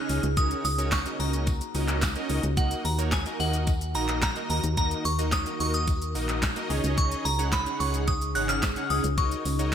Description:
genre	dance-pop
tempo	109 BPM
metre	4/4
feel	straight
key	Eb minor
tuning	A4 = 441 Hz
part	glassy synth bell	melody	0.0-9.7 s	Gb5 to Gb6	-30 LUFS	equal	chorus, phaser, ping-pong delay
part	big bright polysynth	accompaniment	0.0-9.7 s	Bb3 to Gb5	-33 LUFS	right 2 dB	chorus, sidechain pumping
part	ethereal airy pad	sustained chords	0.0-9.7 s	Db3 to Bb4	-35 LUFS	left 1 dB	ensemble chorus, built-in reverb, tremolo, sidechain pumping
part	solid FM bass	bass	0.1-9.7 s	Ab1 to Eb2	-28 LUFS	equal	sidechain pumping
part	pop drum kit	drums	0.1-9.7 s	handclaps, hi-hat, kick drum, shaker, snare drum	-29 LUFS	equal	gated reverb
part	tambourine	percussion	0.1-9.6 s	none	-46 LUFS	right 3 dB	none
room	light reverb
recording	bright 1980s-style digital production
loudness	-24 LUFS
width	side -9 dB against mid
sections	0.0-9.7 A section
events	none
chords	0.4 Gb6/Db; 2.6 Ebm; 6.7 Dbsus2; 9.2 Gb6/Db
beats	| 0.37 0.92 1.47 2.02 | 2.57 3.12 3.67 4.22 | 4.77 5.33 5.88 6.43 | 6.98 7.53 8.08 8.63 | 9.18 9.73

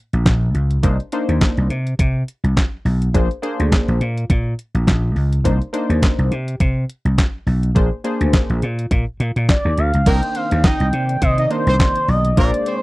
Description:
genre	early-eighties boogie funk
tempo	104 BPM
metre	4/4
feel	swing 56% on 16ths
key	C minor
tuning	A4 = 439 Hz
part	vintage slap bass	bass	0.1-12.5 s	Bb1 to C3	-17 LUFS	equal	none
part	crisp 8-bit digital drum machine	drums	0.1-12.8 s	crash cymbal, handclaps, hi-hat, kick drum, snare drum	-16 LUFS	equal	none
part	funky polysynth comp	accompaniment	0.8-12.8 s	Bb3 to C5	-23 LUFS	left 1 dB	chorus
part	expressive synth lead	melody	9.5-12.8 s	C5 to G5	-21 LUFS	equal	chorus, slapback echo
part	warm horn section	second line	10.1-12.8 s	Bb3 to Eb5	-24 LUFS	right 2 dB	none
part	warm analog pad	sustained chords	10.1-12.8 s	C3 to D5	-28 LUFS	right 1 dB	chorus
room	little or no reverb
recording	dry, close 1970s-style studio recording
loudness	-15 LUFS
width	side -20 dB against mid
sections	0.0-10.1 A section; 10.1-12.8 B section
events	none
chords	0.0 N.C.; 0.8 Cm9; 3.1 Bb9; 5.5 Cm9; 7.8 Bb9; 10.1 Cm9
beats	0.26 | 0.83 1.41 1.99 2.56 | 3.14 3.72 4.30 4.87 | 5.45 6.03 6.60 7.18 | 7.76 8.33 8.91 9.49 | 10.06 10.64 11.22 11.80 | 12.37

